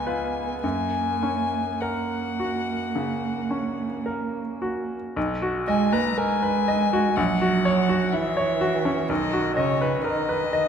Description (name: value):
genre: classical, slow romantic movement for piano trio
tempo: 51-63 BPM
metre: 4/4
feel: rubato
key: F# major, B major from 5.2 s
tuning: A4 = 440 Hz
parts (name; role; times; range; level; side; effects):
- muted violin; melody; 0.0-10.7 s; C#5 to A#5; -28 LUFS; left 6 dB; none
- muted cello; second line; 0.0-10.7 s; C#3 to B3; -27 LUFS; right 6 dB; none
- bright grand piano; accompaniment; 0.0-10.7 s; A#1 to D#5; -25 LUFS; left 1 dB; none
room: wet recital hall reverb, RT60 1.4 s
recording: none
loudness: -22 LUFS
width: side -7 dB against mid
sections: 0.0-5.2 A section; 5.2-10.7 B section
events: none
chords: 0.0 C#7; 0.6 F#; 5.2 B; 7.2 F#/A#; 9.1 B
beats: | 0.63 1.81 2.95 4.06 | 5.16 6.18 7.18 8.14 | 9.10 10.06